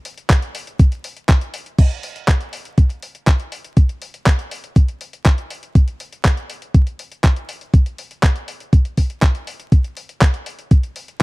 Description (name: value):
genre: italo disco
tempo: 121 BPM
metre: 4/4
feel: straight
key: none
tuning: none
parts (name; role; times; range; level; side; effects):
- clean 12-bit digital drum machine; drums; 0.1-11.2 s; crash cymbal, handclaps, hi-hat; -23 LUFS; equal; none
- electronic kick drum; drums; 0.3-10.8 s; none; -12 LUFS; equal; none
room: little or no reverb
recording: dry, close 1970s-style studio recording, vinyl crackle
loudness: -16 LUFS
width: side -24 dB against mid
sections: 0.0-1.8 A section; 1.8-11.2 B section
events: none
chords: none